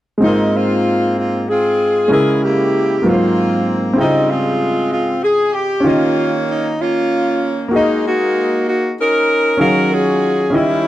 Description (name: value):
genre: gospel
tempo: 64 BPM (dotted quarters)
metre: 6/8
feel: straight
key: Ab major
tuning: A4 = 441 Hz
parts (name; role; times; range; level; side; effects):
- bright saxophone section; melody; 0.2-10.9 s; G3 to Bb4; -15 LUFS; equal; none
- clear grand piano; accompaniment; 0.2-10.9 s; Ab2 to G5; -17 LUFS; equal; none
room: small room ambience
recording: dry, close 1970s-style studio recording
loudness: -13 LUFS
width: side -14 dB against mid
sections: 0.2-10.9 A section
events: none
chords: 0.2 Ab69; 2.1 Dbm6; 3.0 Ab13; 4.0 Dbmaj9#11; 5.8 Eb9; 7.7 Gb69; 9.6 Ebm11